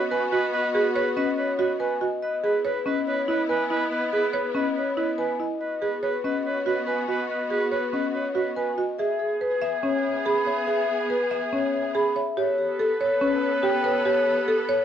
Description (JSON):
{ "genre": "classical, minimalist pattern music", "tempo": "142 BPM", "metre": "4/4", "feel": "straight", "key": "E major", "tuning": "A4 = 439 Hz", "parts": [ { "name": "vibraphone with medium mallets", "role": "melody", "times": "0.0-14.8 s", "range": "G4 to B5", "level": "-26 LUFS", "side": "left 3 dB", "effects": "none" }, { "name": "clear oboe", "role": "second line", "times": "0.0-14.8 s", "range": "G#4 to B4", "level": "-30 LUFS", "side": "right 2 dB", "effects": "none" }, { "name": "clear symphonic string section", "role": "sustained chords", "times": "0.0-14.8 s", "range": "B3 to A4", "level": "-32 LUFS", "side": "left 1 dB", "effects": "none" }, { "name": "buzzing marimba with medium hard mallets", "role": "arpeggios", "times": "0.0-14.8 s", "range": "C#4 to E5", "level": "-26 LUFS", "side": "right 3 dB", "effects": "none" } ], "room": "moderate studio reverb, RT60 0.7 s", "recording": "worn, warbling old tape, cassette tape, warbly pitch drift", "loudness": "-22 LUFS", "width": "side -9 dB against mid", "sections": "0.0-9.0 A section; 9.0-14.8 B section", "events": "none", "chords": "0.0 G#m7; 2.2 C#m7; 5.6 G#m7; 9.0 E; 12.4 Gadd9" }